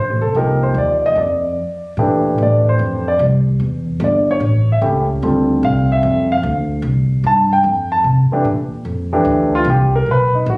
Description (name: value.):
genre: jazz piano trio.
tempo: 148 BPM.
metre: 4/4.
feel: swing 66% on 8ths.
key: unclear.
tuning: A4 = 441 Hz.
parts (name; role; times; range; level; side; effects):
warm grand piano; melody; 0.0-10.6 s; E3 to A5; -15 LUFS; equal; none.
upright bass; bass; 0.0-10.6 s; F1 to C3; -16 LUFS; equal; none.
room: moderate large studio reverb, RT60 1.0 s.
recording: recorded on a phone in the room, club reverb, compression, lossy compression artefacts.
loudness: -13 LUFS.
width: side -29 dB against mid.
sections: 0.0-2.0 A section; 2.0-10.6 B section.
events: break 1.6-2.0.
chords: 0.4 Cm7; 1.2 Dm/F; 2.0 Bbmaj9; 3.6 C#dim (rootless); 4.4 A7; 5.2 Dm7; 6.8 C5; 7.7 F; 8.5 Bbmaj7.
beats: | 0.35 0.76 1.17 1.57 | 1.98 2.39 2.79 3.20 | 3.60 4.01 4.42 4.82 | 5.22 5.63 6.03 6.44 | 6.84 7.25 7.65 8.06 | 8.46 8.87 9.27 9.67 | 10.08 10.48.